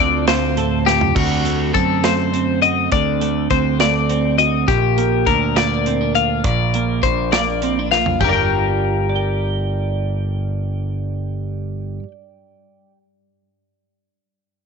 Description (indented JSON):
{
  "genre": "math rock and midwest emo",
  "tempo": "68 BPM (dotted quarters)",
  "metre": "6/8",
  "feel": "straight",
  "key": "G minor",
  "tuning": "A4 = 440 Hz",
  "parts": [
    { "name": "twelve-string electric guitar", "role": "accompaniment", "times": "0.0-13.0 s", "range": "G2 to G5", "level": "-21 LUFS", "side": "right 10 dB", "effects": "analog chorus" },
    { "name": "twelve-string electric guitar", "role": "arpeggios", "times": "0.0-12.1 s", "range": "F#4 to G5", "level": "-18 LUFS", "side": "left 15 dB", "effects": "none" },
    { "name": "growling picked electric bass", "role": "bass", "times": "0.0-12.0 s", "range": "G1 to F#2", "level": "-22 LUFS", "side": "equal", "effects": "overdrive" },
    { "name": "modern studio drum kit", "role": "drums", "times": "0.3-8.3 s", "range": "crash cymbal, hi-hat, kick drum, snare drum, splash cymbal, toms", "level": "-22 LUFS", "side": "right 3 dB", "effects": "none" }
  ],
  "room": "light reverb",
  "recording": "1960s-style stereo with parts hard left and right, nothing above 8.0 kHz",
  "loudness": "-15 LUFS",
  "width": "side -5 dB against mid",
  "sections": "0.0-1.2 A section; 1.2-8.2 B section; 8.2-11.7 C section",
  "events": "drum fill 0.9, 7.9",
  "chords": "0.0 Dm7; 1.2 D7b9; 4.7 Bb6; 8.2 Gm7",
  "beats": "0.28 | 1.16 2.04 | 2.92 3.80 | 4.68 5.56 | 6.44 7.33 | 8.21 9.09 | 9.97 10.86"
}